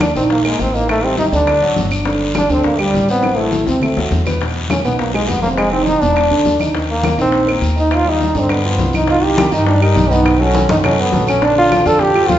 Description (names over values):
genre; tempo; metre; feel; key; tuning
Afro-Cuban jazz; 205 BPM; 4/4; straight; unclear; A4 = 440 Hz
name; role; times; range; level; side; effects
clear trombone; melody; 0.0-12.4 s; G3 to A4; -16 LUFS; equal; none
warm grand piano; accompaniment; 0.0-12.4 s; B2 to Eb5; -18 LUFS; right 2 dB; none
upright bass; bass; 0.0-12.4 s; Fb1 to G2; -20 LUFS; left 1 dB; none
bongos; percussion; 0.0-12.4 s; none; -25 LUFS; left 4 dB; none
claves; percussion; 0.0-12.3 s; none; -28 LUFS; right 1 dB; none
congas; percussion; 0.0-12.4 s; none; -24 LUFS; left 1 dB; none
guiro; percussion; 0.0-12.4 s; none; -28 LUFS; left 3 dB; none
room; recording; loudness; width
wet recital hall reverb, RT60 1.4 s; recorded in a church or concert hall, nothing above 7.8 kHz; -12 LUFS; side -11 dB against mid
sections
0.0-9.1 A section; 9.1-12.4 B section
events
drum fill 3.2-4.4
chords
0.0 Eb5; 0.9 Cm69/A; 1.5 D; 2.1 G5; 3.2 Am; 3.8 D9; 4.4 E; 5.6 F5; 6.2 E5; 6.7 Eb6; 8.5 G7b13; 9.1 Cm7; 10.3 B9; 11.4 Bbmaj7